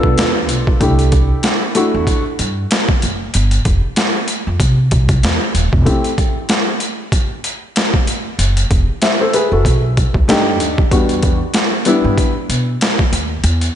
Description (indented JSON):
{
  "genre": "hip hop, jazz-hop",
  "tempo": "95 BPM",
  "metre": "4/4",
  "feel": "swing 57% on 16ths",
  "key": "E minor",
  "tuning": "A4 = 438 Hz",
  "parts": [
    { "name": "dark grand piano", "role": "accompaniment", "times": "0.0-12.3 s", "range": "G3 to E5", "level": "-17 LUFS", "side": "left 1 dB", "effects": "slapback echo" },
    { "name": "upright bass", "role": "bass", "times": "0.0-13.7 s", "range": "D#1 to C3", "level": "-16 LUFS", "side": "equal", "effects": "none" },
    { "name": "boom bap sampler-style drum kit", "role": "drums", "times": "0.0-13.7 s", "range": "hi-hat, kick drum, snare drum", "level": "-16 LUFS", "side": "equal", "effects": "overdrive" }
  ],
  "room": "light reverb",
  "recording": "nothing above 10.7 kHz",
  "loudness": "-13 LUFS",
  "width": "side -10 dB against mid",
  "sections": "0.0-13.8 A section",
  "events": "break 5.9-8.4",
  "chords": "0.0 G9 (rootless); 0.8 C6; 3.3 Fsus2; 4.6 C; 5.9 Am7; 8.4 Eadd9; 9.6 B7alt; 10.9 Em9",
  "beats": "0.18 | 0.81 1.44 2.07 2.70 | 3.33 3.96 4.60 5.23 | 5.86 6.49 7.12 7.75 | 8.39 9.02 9.65 10.28 | 10.91 11.54 12.18 12.81 | 13.44"
}